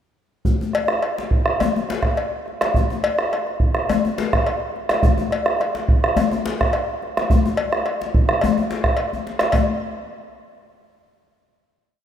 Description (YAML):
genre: west african traditional, West African drum ensemble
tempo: 106 BPM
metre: 4/4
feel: straight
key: none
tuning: none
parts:
  - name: bombo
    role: percussion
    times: 0.4-9.8 s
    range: none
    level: -20 LUFS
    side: right 2 dB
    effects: none
  - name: djembe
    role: percussion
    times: 0.5-9.8 s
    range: none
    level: -25 LUFS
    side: left 6 dB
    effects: none
  - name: cowbell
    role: percussion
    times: 0.7-9.8 s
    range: none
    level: -26 LUFS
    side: left 4 dB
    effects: none
room: moderate lush hall reverb, RT60 2.6 s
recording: rough home demo mix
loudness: -18 LUFS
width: side -9 dB against mid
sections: 0.5-9.5 A section; 9.5-11.7 final hit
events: speeding up 0.5-11.7; drum fill 9.1-9.5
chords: none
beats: | 0.45 1.03 1.61 2.18 | 2.76 3.33 3.90 4.47 | 5.04 5.61 6.18 6.74 | 7.30 7.86 8.42 8.97 | 9.53